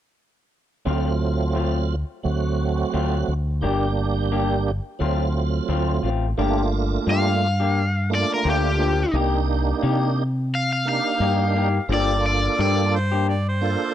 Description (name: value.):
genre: blues.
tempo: 87 BPM.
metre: 4/4.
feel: swing 53% on 16ths.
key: G minor from 6.4 s.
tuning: A4 = 440 Hz.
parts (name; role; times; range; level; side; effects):
tonewheel organ; accompaniment; 0.9-13.9 s; F#3 to A4; -25 LUFS; right 6 dB; chorus vibrato, slow rotary speaker.
electric guitar through a small old amp; stabs; 0.9-13.3 s; F3 to G4; -27 LUFS; left 7 dB; none.
deep dub fingered electric bass; bass; 0.9-13.8 s; G1 to C3; -23 LUFS; equal; none.
cranked stack guitar; melody; 7.1-12.9 s; G4 to F5; -24 LUFS; left 1 dB; overdrive.
clear harmonica; second line; 13.0-13.9 s; C5 to D5; -27 LUFS; right 3 dB; overdrive.
room: little or no reverb.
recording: dry, close 1970s-style studio recording.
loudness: -20 LUFS.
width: side -11 dB against mid.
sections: 0.9-6.4 A section; 6.4-13.9 B section.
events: none.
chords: 0.9 D7#9; 3.6 Gm; 5.0 D7#9; 6.4 Gm7; 9.1 Cm7; 11.9 Gm7.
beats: | 0.86 1.55 2.24 2.93 | 3.62 4.32 5.01 5.70 | 6.39 7.08 7.77 8.46 | 9.14 9.83 10.52 11.21 | 11.90 12.59 13.28.